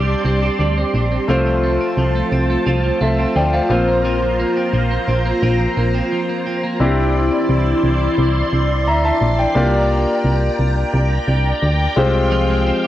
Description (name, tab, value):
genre	pop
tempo	87 BPM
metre	4/4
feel	straight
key	C mixolydian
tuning	A4 = 442 Hz
part	clear concert grand piano	accompaniment	0.0-12.9 s	Ab3 to Bb5	-20 LUFS	left 2 dB	cassette tape
part	string machine, full ensemble	sustained chords	0.0-12.9 s	E4 to C6	-20 LUFS	equal	ensemble chorus, cassette tape
part	twelve-string electric guitar	riff	0.0-7.4, 12.3-12.9 s	F3 to D4	-24 LUFS	right 3 dB	wide subtle chorus, cassette tape, analog delay
part	solid FM bass	bass	0.0-12.7 s	Bb1 to D2	-18 LUFS	equal	none
room	light reverb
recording	home recording on cassette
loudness	-15 LUFS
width	side -13 dB against mid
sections	0.0-6.8 A section; 6.8-12.9 B section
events	break 6.1-6.8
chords	0.0 Csus2; 1.3 F/C; 3.7 Bbsus2; 6.8 Cadd9; 9.6 Bb6/C; 12.0 Fmadd9/C